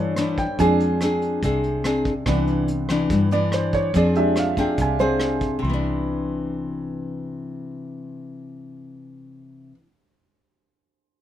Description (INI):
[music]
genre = bossa nova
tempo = 143 BPM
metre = 4/4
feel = straight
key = C major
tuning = A4 = 444 Hz
[part]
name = clear grand piano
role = accompaniment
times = 0.0-11.2 s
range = E3 to C6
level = -25 LUFS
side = right 3 dB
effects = none
[part]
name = nylon-string guitar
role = accompaniment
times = 0.0-9.9 s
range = G2 to Ab4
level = -23 LUFS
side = left 2 dB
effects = none
[part]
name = fingered electric bass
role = bass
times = 0.0-9.7 s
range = C2 to G2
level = -26 LUFS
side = equal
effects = none
[part]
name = vintage brush drum kit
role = drums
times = 0.2-5.5 s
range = hi-hat, kick drum, rim click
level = -30 LUFS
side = equal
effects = none
[sound]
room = light reverb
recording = minimal, uncompressed stereo recording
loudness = -19 LUFS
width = side -11 dB against mid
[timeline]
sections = 0.0-5.6 A section; 5.6-9.0 B section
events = grand piano solo 0.0-5.6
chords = 0.0 Cmaj9; 0.6 Fm6; 2.3 Cmaj9; 3.9 Fm6; 5.6 Cmaj9